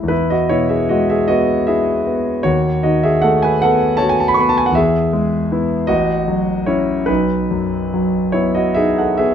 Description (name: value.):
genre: classical, romantic nocturne for solo piano.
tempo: 46-55 BPM (dotted quarters).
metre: 12/8.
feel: rubato.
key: E major.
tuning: A4 = 440 Hz.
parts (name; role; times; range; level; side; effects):
warm concert grand piano; solo; 0.0-9.3 s; A1 to C#6; -14 LUFS; equal; none.
room: light reverb.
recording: dark, warm production.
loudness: -14 LUFS.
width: side -8 dB against mid.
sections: 0.1-9.3 A section.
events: none.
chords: 0.1 E; 2.5 B7/D#; 4.8 E; 5.9 F#m/A; 7.1 B.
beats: | 0.11 1.31 2.46 3.64 | 4.76 5.89 7.09 8.35.